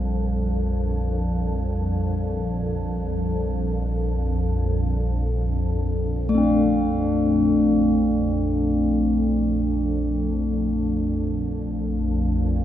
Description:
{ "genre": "world meditative, free-time meditation music", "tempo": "free time", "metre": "none", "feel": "none", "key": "Bb major", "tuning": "A4 = 443 Hz", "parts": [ { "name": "glassy FM pad", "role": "drone", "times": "0.0-12.6 s", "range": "Bb1 to F2", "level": "-23 LUFS", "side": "equal", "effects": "ensemble chorus, built-in reverb" }, { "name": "bronze singing bowl", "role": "texture", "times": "0.0-12.2 s", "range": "G3 to D4", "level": "-23 LUFS", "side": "left 1 dB", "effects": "none" } ], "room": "wet cathedral reverb, RT60 6.1 s", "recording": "none", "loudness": "-20 LUFS", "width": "side -11 dB against mid", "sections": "0.0-11.7 A section", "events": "none", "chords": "none", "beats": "free time" }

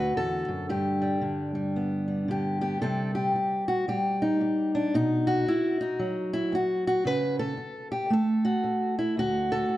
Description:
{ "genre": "folk, solo fingerstyle acoustic guitar", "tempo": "113 BPM", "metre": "4/4", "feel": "swing 60% on 8ths", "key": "unclear", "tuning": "A4 = 441 Hz", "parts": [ { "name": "fingerpicked steel-string acoustic guitar", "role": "solo", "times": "0.0-9.8 s", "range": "D2 to B4", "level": "-25 LUFS", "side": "equal", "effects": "none" } ], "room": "moderate recital hall reverb, RT60 1.8 s", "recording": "dark, warm production", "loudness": "-25 LUFS", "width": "side -15 dB against mid", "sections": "0.0-2.8 A section; 2.8-9.8 B section", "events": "none", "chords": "0.0 D7; 0.7 G; 2.8 Cm; 4.9 B; 7.1 A/C#; 9.2 N.C.", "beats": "0.17 | 0.70 1.23 1.76 2.29 | 2.82 3.35 3.88 4.41 | 4.94 5.47 6.00 6.53 | 7.05 7.58 8.11 8.64 | 9.17 9.70" }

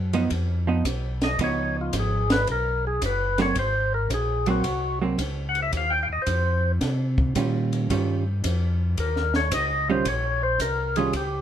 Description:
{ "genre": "soul jazz organ trio", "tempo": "111 BPM", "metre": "4/4", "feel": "swing 67% on 8ths", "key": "unclear", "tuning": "A4 = 440 Hz", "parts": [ { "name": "mellow tonewheel organ", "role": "bass", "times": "0.0-11.4 s", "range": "Gb1 to C3", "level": "-26 LUFS", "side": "equal", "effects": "slow rotary speaker" }, { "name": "hollow-body jazz guitar", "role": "accompaniment", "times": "0.1-11.1 s", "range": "Eb3 to F4", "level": "-25 LUFS", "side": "right 5 dB", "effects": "none" }, { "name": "compact cocktail drum kit", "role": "drums", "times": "0.1-11.3 s", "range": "hi-hat, kick drum, ride cymbal, snare drum", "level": "-30 LUFS", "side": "equal", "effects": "none" }, { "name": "percussive tonewheel organ", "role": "melody", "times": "1.2-11.4 s", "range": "F4 to G5", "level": "-25 LUFS", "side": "left 2 dB", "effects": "slow rotary speaker" } ], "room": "moderate studio reverb, RT60 0.6 s", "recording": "band playing live in one room", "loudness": "-22 LUFS", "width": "side -10 dB against mid", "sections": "0.0-11.4 A section", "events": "tonewheel organ solo 0.0-11.4", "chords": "0.0 Ab9; 5.7 Eb9", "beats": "0.30 0.85 | 1.39 1.93 2.48 3.02 | 3.56 4.10 4.64 5.19 | 5.73 6.27 6.81 7.36 | 7.90 8.44 8.98 9.52 | 10.06 10.61 11.15" }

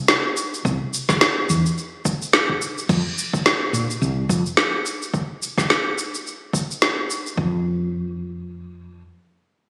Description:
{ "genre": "sunset chillout", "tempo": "107 BPM", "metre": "4/4", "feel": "swing 57% on 16ths", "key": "unclear", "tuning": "A4 = 441 Hz", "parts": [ { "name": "smooth R&B drum kit", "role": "drums", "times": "0.1-7.4 s", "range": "crash cymbal, shaker, snare drum", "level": "-22 LUFS", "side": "equal", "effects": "none" }, { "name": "woody fretless electric bass", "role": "bass", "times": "0.6-9.0 s", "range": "C2 to Bb2", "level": "-24 LUFS", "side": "equal", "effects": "none" }, { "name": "electronic kick drum", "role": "drums", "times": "0.7-7.5 s", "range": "none", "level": "-28 LUFS", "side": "equal", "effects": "overdrive" } ], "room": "moderate concert hall reverb, RT60 2.2 s", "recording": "recorded on a phone in the room, studio reverb, compression", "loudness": "-22 LUFS", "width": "mono", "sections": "0.0-2.9 A section; 2.9-7.4 B section; 7.4-9.6 C section", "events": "none", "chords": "none", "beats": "0.09 | 0.65 1.21 1.77 2.33 | 2.89 3.45 4.01 4.58 | 5.14 5.70 6.26 6.82 | 7.38 7.94 8.50" }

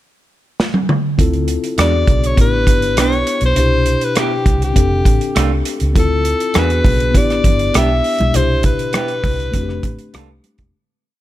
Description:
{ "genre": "lush 1970s-style soul", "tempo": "100 BPM", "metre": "4/4", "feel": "straight", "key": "unclear", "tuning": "A4 = 441 Hz", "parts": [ { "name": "modern studio drum kit", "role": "drums", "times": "0.6-10.7 s", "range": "hi-hat, kick drum, rim click, snare drum, toms", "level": "-17 LUFS", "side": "right 1 dB", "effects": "none" }, { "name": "mellow tine electric piano", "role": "accompaniment", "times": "1.2-10.8 s", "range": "B2 to A4", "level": "-21 LUFS", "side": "left 3 dB", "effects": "slow stereo tremolo" }, { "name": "vintage muted fingered electric bass", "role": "bass", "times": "1.2-10.7 s", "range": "E1 to E2", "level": "-18 LUFS", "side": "equal", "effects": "none" }, { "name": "bright alto saxophone", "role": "melody", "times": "1.8-10.4 s", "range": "G4 to E5", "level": "-19 LUFS", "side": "left 2 dB", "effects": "none" }, { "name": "electric guitar through a small old amp", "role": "riff", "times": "1.8-10.3 s", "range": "G#3 to A4", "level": "-24 LUFS", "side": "right 7 dB", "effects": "none" }, { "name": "congas", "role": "percussion", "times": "6.0-10.7 s", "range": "none", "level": "-26 LUFS", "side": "right 3 dB", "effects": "none" } ], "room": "studio reverb", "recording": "none", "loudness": "-13 LUFS", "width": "side -14 dB against mid", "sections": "0.0-1.2 pickup bar; 1.2-10.7 verse", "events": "drum fill 0.6-1.2; fade-out 8.3-10.7", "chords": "0.0 N.C.; 1.2 Dm9; 1.8 E9; 2.4 A9sus4; 3.6 Cmaj7; 4.8 F6; 6.0 Dm9; 6.6 E9; 7.1 A9sus4; 8.3 Cmaj7; 9.5 F6", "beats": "0.58 | 1.18 1.78 2.38 2.97 | 3.57 4.17 4.76 5.36 | 5.96 6.55 7.15 7.75 | 8.34 8.94 9.54 10.14" }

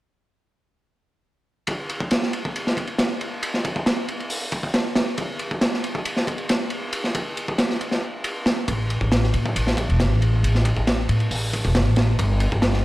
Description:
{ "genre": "breakbeat, breaks", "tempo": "137 BPM", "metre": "4/4", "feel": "straight", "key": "unclear", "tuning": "A4 = 440 Hz", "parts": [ { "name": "crunchy breakbeat drum kit", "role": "drums", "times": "1.7-12.8 s", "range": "hi-hat, kick drum, ride cymbal, snare drum", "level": "-22 LUFS", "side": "equal", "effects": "high-pass filter on kick, high-pass filter on cymbals, high-pass filter on hats, high-pass filter on snare, high-pass filter on room" }, { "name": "upright bass", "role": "bass", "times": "8.7-12.8 s", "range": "E1 to A2", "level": "-20 LUFS", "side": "equal", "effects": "none" } ], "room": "light reverb", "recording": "dark, warm production", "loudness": "-20 LUFS", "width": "side -17 dB against mid", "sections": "1.7-12.8 A section", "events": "none", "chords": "none", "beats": "| 1.68 2.11 2.55 2.99 | 3.43 3.87 4.30 4.74 | 5.18 5.62 6.05 6.49 | 6.93 7.37 7.81 8.24 | 8.68 9.12 9.56 10.00 | 10.44 10.87 11.31 11.75 | 12.19 12.62" }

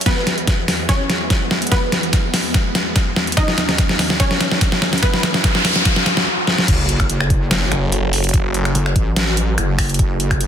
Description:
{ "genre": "heavy wobble dubstep", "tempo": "145 BPM", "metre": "4/4", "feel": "half-time", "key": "F# dorian", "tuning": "A4 = 440 Hz", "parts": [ { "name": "supersaw chords", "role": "sustained chords", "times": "0.0-10.5 s", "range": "D#2 to D#5", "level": "-26 LUFS", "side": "right 1 dB", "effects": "phaser, sidechain pumping, low-pass filter" }, { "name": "dubstep drum kit", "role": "drums", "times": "0.0-10.5 s", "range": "crash cymbal, finger snaps, hi-hat, snare drum", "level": "-18 LUFS", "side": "equal", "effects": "overdrive" }, { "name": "wide unison pluck", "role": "melody", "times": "0.1-6.6 s", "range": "B3 to D#5", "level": "-25 LUFS", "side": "right 1 dB", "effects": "dub echo" }, { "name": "electronic kick drum", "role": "drums", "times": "0.1-10.4 s", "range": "none", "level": "-18 LUFS", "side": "equal", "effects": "overdrive" }, { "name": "riser, noise sweep and sub drop", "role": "sound effects", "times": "3.8-8.3 s", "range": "none", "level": "-24 LUFS", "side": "equal", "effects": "none" }, { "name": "wobble bass", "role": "bass", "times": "6.7-10.5 s", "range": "F#1 to A1", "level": "-19 LUFS", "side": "equal", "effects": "chorus, overdrive" }, { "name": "snarling distorted saw bass", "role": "bass", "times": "7.7-8.7 s", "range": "F#1", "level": "-18 LUFS", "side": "equal", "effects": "distortion, overdrive" } ], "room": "light reverb, digital ambience", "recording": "dense, heavily limited modern master", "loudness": "-14 LUFS", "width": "side -9 dB against mid", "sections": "0.0-6.7 A section; 6.7-10.5 B section", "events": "build-up 0.0-6.7; drum fill 0.0-6.3, 6.5; riser 3.8-6.3; noise sweep 5.0-6.7; drop 6.7-10.5; impact 6.7-8.3", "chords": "0.1 E; 3.4 Badd9/D#; 6.7 F#m", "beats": "| 0.06 0.47 0.89 1.30 | 1.72 2.13 2.54 2.96 | 3.37 3.79 4.20 4.61 | 5.03 5.44 5.85 6.27 | 6.68 7.09 7.51 7.92 | 8.34 8.75 9.16 9.58 | 9.99 10.41" }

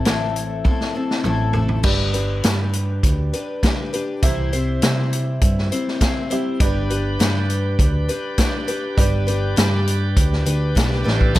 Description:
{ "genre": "folk rock and heartland rock", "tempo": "101 BPM", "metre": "4/4", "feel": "straight", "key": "unclear", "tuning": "A4 = 440 Hz", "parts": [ { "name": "picked twelve-string acoustic guitar", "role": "accompaniment", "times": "0.0-11.4 s", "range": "A2 to C5", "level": "-24 LUFS", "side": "left 3 dB", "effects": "none" }, { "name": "hollow-body short-scale picked electric bass", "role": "bass", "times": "0.0-11.4 s", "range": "G1 to C3", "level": "-21 LUFS", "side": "equal", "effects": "none" }, { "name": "vintage drum kit", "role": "drums", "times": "0.1-11.4 s", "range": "crash cymbal, hi-hat, kick drum, snare drum, toms", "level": "-20 LUFS", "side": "equal", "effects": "none" }, { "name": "warm upright piano", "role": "accompaniment", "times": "1.8-11.4 s", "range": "G4 to E5", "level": "-31 LUFS", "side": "right 7 dB", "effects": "none" }, { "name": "bright tonewheel organ", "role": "sustained chords", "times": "6.6-11.4 s", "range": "A3 to D5", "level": "-30 LUFS", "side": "right 2 dB", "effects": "slow rotary speaker" } ], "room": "little or no reverb", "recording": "none", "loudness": "-17 LUFS", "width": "side -16 dB against mid", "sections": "0.0-1.8 A section; 1.8-11.4 B section", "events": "drum fill 0.7-1.8, 11.1", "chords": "0.0 Am; 1.8 G; 4.2 C; 6.6 G", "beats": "0.06 0.66 1.25 | 1.85 2.44 3.04 3.63 | 4.23 4.82 5.42 6.01 | 6.61 7.20 7.79 8.39 | 8.98 9.58 10.17 10.77 | 11.36" }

